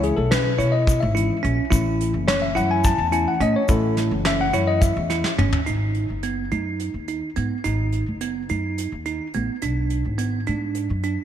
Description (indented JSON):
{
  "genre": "progressive instrumental, band music in an uneven meter",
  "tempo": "213 BPM (eighths)",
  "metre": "7/8",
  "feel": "straight",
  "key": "G# phrygian",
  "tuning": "A4 = 443 Hz",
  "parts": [
    { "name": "tine electric piano", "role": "accompaniment", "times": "0.0-5.6 s", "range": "E3 to A5", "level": "-23 LUFS", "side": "left 5 dB", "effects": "slapback echo" },
    { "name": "bell-like tine electric piano", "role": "arpeggios", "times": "0.0-11.2 s", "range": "B3 to E4", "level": "-26 LUFS", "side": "right 6 dB", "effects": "slapback echo" },
    { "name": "upright bass", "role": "bass", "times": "0.0-11.2 s", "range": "F#1 to B2", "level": "-24 LUFS", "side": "equal", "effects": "none" },
    { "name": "soft brush drum kit", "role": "drums", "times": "0.0-11.2 s", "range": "hi-hat, kick drum, snare drum, toms", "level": "-24 LUFS", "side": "equal", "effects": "none" },
    { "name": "egg shaker", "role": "percussion", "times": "0.3-5.2 s", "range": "none", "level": "-37 LUFS", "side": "left 8 dB", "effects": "none" }
  ],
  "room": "moderate lush hall reverb, RT60 2.7 s",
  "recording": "big arena sound",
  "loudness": "-20 LUFS",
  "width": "side -10 dB against mid",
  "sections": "0.0-5.7 A section; 5.7-11.2 B section",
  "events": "tine electric piano solo 0.0-5.7; drum fill 5.2-5.7",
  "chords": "0.0 C#m; 1.7 A; 5.7 G#m; 9.6 Bm"
}